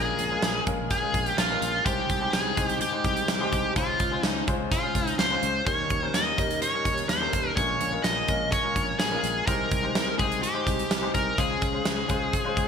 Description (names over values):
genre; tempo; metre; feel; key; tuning
1980s-style pop; 126 BPM; 4/4; straight; Ab major; A4 = 440 Hz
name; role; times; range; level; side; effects
smooth overdriven lead guitar; melody; 0.0-12.7 s; F4 to Eb5; -27 LUFS; equal; digital delay
clear baby grand piano; accompaniment; 0.0-12.7 s; Bb2 to C5; -31 LUFS; left 4 dB; none
sustaining fretless electric bass; bass; 0.0-12.7 s; Bb1 to Eb2; -34 LUFS; equal; wide subtle chorus
big rock drum kit; drums; 0.2-12.7 s; hi-hat, kick drum, snare drum; -28 LUFS; right 1 dB; gated reverb
room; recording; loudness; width
moderate plate reverb, RT60 1.7 s, studio reverb; bright 1980s-style digital production; -23 LUFS; side -7 dB against mid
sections
0.0-12.7 A section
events
none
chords
0.0 Bbm7; 1.9 Abmaj7/C; 3.8 Dbmaj7; 5.7 Eb7; 7.6 Bbm7; 9.5 Abmaj7/C; 11.4 Dbmaj7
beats
0.43 0.90 1.38 | 1.86 2.33 2.81 3.29 | 3.76 4.24 4.71 5.19 | 5.67 6.14 6.62 7.09 | 7.57 8.05 8.52 9.00 | 9.48 9.95 10.43 10.90 | 11.38 11.86 12.33